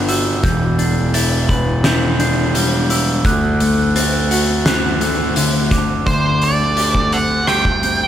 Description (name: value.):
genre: post-rock.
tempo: 85 BPM.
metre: 4/4.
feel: straight.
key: unclear.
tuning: A4 = 440 Hz.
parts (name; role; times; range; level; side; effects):
glockenspiel with rubber mallets; arpeggios; 0.0-8.1 s; D6 to A6; -24 LUFS; right 3 dB; analog delay.
semi-hollow electric guitar; arpeggios; 0.0-8.1 s; D3 to B4; -22 LUFS; left 2 dB; analog delay.
fuzz picked electric bass; bass; 0.0-8.1 s; E1 to D2; -18 LUFS; equal; overdrive.
oversized low-tuned drum kit; drums; 0.1-8.0 s; hi-hat, kick drum, rim click, snare drum; -19 LUFS; equal; none.
octave-fuzz lead guitar; melody; 6.1-8.1 s; C5 to G5; -17 LUFS; right 2 dB; distortion, analog delay.
room: light reverb, small room ambience.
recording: none.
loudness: -13 LUFS.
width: side -10 dB against mid.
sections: 0.0-6.1 A section; 6.1-8.1 B section.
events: none.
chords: 0.4 Em7; 3.3 D7; 6.1 D7sus4.